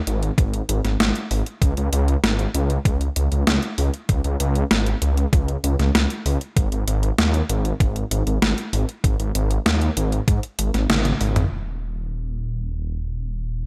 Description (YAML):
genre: synthwave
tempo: 97 BPM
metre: 4/4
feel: straight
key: unclear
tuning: A4 = 441 Hz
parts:
  - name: detuned saw bass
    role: bass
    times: 0.1-13.7 s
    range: Eb1 to Ab2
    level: -24 LUFS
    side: equal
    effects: chorus, tube saturation, sidechain pumping
  - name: detuned 8-bit digital drum machine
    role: drums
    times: 0.1-11.5 s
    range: hi-hat, snare drum, toms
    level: -25 LUFS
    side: equal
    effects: overdrive, low-pass filter on snare, low-pass filter on hats, low-pass filter on toms, gated reverb
  - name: electronic kick drum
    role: drums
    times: 0.4-10.4 s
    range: none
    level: -21 LUFS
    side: equal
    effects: overdrive
room: little or no reverb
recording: none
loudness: -22 LUFS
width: mono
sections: 0.0-11.5 A section; 11.5-13.7 B section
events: drum fill 10.9-11.5; band accent 10.9-11.2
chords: none